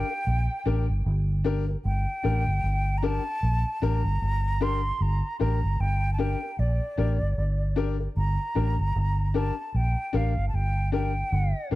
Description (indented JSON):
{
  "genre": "roots reggae",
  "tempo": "76 BPM",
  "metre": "4/4",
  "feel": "swing 58% on 16ths",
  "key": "G minor",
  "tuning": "A4 = 439 Hz",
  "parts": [
    { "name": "mellow silver concert flute", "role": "melody", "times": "0.0-11.7 s", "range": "D5 to C6", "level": "-32 LUFS", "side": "right 1 dB", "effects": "tape echo" },
    { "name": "clear upright piano", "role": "stabs", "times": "0.0-11.8 s", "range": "D4 to Bb4", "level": "-31 LUFS", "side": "left 8 dB", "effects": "none" },
    { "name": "vintage muted fingered electric bass", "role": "bass", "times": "0.0-11.8 s", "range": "G1 to Bb1", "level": "-25 LUFS", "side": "equal", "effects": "none" }
  ],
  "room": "small room ambience",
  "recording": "dry, close 1970s-style studio recording",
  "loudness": "-24 LUFS",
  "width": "side -17 dB against mid",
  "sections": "0.0-11.8 A section",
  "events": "none",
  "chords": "0.0 Gm",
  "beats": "0.27 1.06 | 1.85 2.63 3.42 4.21 | 5.00 5.79 6.58 7.37 | 8.16 8.95 9.74 10.53 | 11.32"
}